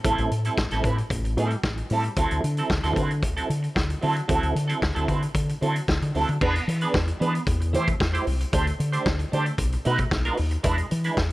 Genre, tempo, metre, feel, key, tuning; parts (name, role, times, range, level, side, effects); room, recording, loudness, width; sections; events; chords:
disco; 113 BPM; 4/4; straight; A dorian; A4 = 439 Hz
clean electric guitar; accompaniment; 0.0-11.2 s; F#3 to C5; -27 LUFS; right 2 dB; wah
fingered electric bass; bass; 0.0-11.3 s; A1 to E3; -25 LUFS; equal
vintage drum kit; drums; 0.0-11.3 s; crash cymbal, hi-hat, kick drum, snare drum; -27 LUFS; equal
small room ambience; -22 LUFS; side -18 dB against mid
0.0-6.4 A section; 6.4-11.3 B section
0.0 Am7; 2.2 D9; 6.4 E7; 7.5 Am7/E; 8.5 D7sus4; 9.6 B7; 10.6 E7